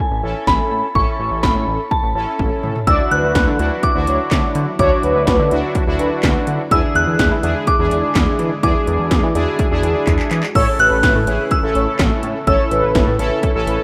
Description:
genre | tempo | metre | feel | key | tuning
synth-pop | 125 BPM | 4/4 | straight | unclear | A4 = 440 Hz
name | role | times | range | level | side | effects
soft synth bell | melody | 0.0-13.8 s | G#5 to F#6 | -22 LUFS | equal | chorus, tape echo, shimmer reverb
chorused synth bass | bass | 0.1-13.8 s | A1 to E3 | -23 LUFS | equal | none
analog synth brass | accompaniment | 0.2-13.8 s | C#4 to A4 | -24 LUFS | equal | chorus, shimmer reverb
80s electronic pad drums | drums | 0.5-13.8 s | crash cymbal, handclaps, hi-hat, kick drum, snare drum, toms | -21 LUFS | equal | gated reverb on snare and toms, overdrive
mellow synth brass | second line | 2.9-6.1, 10.6-13.8 s | B4 to D5 | -23 LUFS | equal | chorus, tape echo, shimmer reverb
string machine, cellos | sustained chords | 2.9-13.8 s | C#3 to F#4 | -32 LUFS | equal | none
room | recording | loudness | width
moderate plate reverb, RT60 2.9 s | rough home demo mix | -16 LUFS | mono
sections
0.0-2.9 A section; 2.9-13.8 B section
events
drum fill 2.4-2.9, 10.1-10.6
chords
0.0 A; 2.9 Dadd9; 6.7 E7; 10.6 A

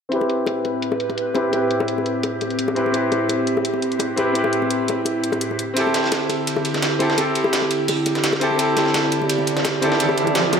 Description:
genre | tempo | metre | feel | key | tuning
liquid drum and bass | 170 BPM | 4/4 | swing 53% on 16ths | A minor | A4 = 439 Hz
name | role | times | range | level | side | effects
bright concert grand piano | accompaniment | 0.1-10.6 s | C4 to B4 | -21 LUFS | left 1 dB | low-pass filter, ping-pong delay
airy breathy pad | sustained chords | 0.3-10.6 s | A2 to D5 | -24 LUFS | right 2 dB | chorus
electronic hi-hat | drums | 0.1-10.6 s | none | -29 LUFS | left 2 dB | overdrive, low-pass filter on hats, small room ambience
bongos | percussion | 0.2-10.6 s | none | -27 LUFS | left 4 dB | none
dusty soul sampler-style drum kit | drums | 5.8-10.6 s | hi-hat, ride cymbal, snare drum | -24 LUFS | right 2 dB | high-pass filter on cymbals, small room ambience, high-pass filter on snare, high-pass filter on hats, high-pass filter on room
riser | sound effects | 9.4-10.6 s | none | -25 LUFS | right 3 dB | none
room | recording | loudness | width
moderate lush hall reverb, RT60 1.9 s, digital ambience | none | -18 LUFS | side -6 dB against mid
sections
0.1-10.6 A section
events
filter sweep on grand piano 0.1-10.6; riser 9.4-10.6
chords
0.1 Am9; 5.6 D7sus4

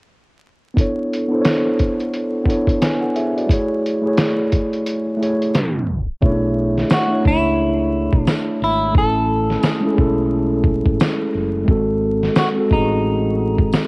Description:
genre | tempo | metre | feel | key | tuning
lo-fi hip hop | 88 BPM | 4/4 | swing 61% on 16ths | B dorian | A4 = 441 Hz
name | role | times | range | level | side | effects
mellow tine electric piano | accompaniment | 0.7-13.9 s | G#3 to G#5 | -18 LUFS | equal | medium stereo tremolo, cassette tape
lo-fi sampler-style drum kit | drums | 0.8-13.9 s | hi-hat, kick drum, snare drum | -18 LUFS | equal | cassette tape
fingered electric bass | bass | 6.2-13.7 s | F#1 to C#2 | -23 LUFS | equal | none
semi-hollow electric guitar | melody | 6.9-13.9 s | D#4 to A4 | -21 LUFS | equal | cassette tape, analog delay
tambourine | percussion | 6.9-13.9 s | none | -41 LUFS | left 1 dB | none
room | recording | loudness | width
moderate spring reverb, RT60 2.8 s | home recording on cassette, vinyl crackle, tape stop | -15 LUFS | side -29 dB against mid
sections
0.8-6.2 A section; 6.2-13.9 B section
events
break 4.9-6.2; tape stop 5.5-6.2; hi-hats muted 6.2-13.9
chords
0.8 Bm11; 3.5 Amaj7; 6.2 Bm11; 9.0 Amaj7; 11.7 G#7b9

